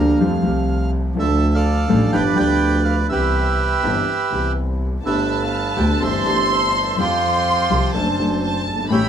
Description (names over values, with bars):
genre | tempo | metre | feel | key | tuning
tango | 124 BPM | 4/4 | rubato | C major | A4 = 440 Hz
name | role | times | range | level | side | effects
bandoneon | melody | 0.0-9.1 s | F4 to A5 | -22 LUFS | right 4 dB | none
warm grand piano | accompaniment | 0.0-9.1 s | F#1 to A4 | -20 LUFS | left 1 dB | none
clear double bass | bass | 0.0-9.1 s | F#1 to F2 | -22 LUFS | equal | none
dark studio violin section | second line | 5.0-9.1 s | A5 to C6 | -21 LUFS | right 1 dB | none
room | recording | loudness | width
wet small room ambience, RT60 0.5 s | heard from further back in the room | -16 LUFS | side -8 dB against mid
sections
0.0-9.1 A section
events
none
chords
0.2 Fadd9; 1.2 Dm; 2.1 G7; 3.1 Cmaj7; 5.0 Gadd9; 6.0 C6/G; 7.0 Fsus2; 7.9 D/F#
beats
0.21 0.69 | 1.17 1.66 2.14 2.62 | 3.10 3.59 4.07 4.56 | 5.04 5.53 6.01 6.50 | 6.98 7.46 7.95 8.43 | 8.91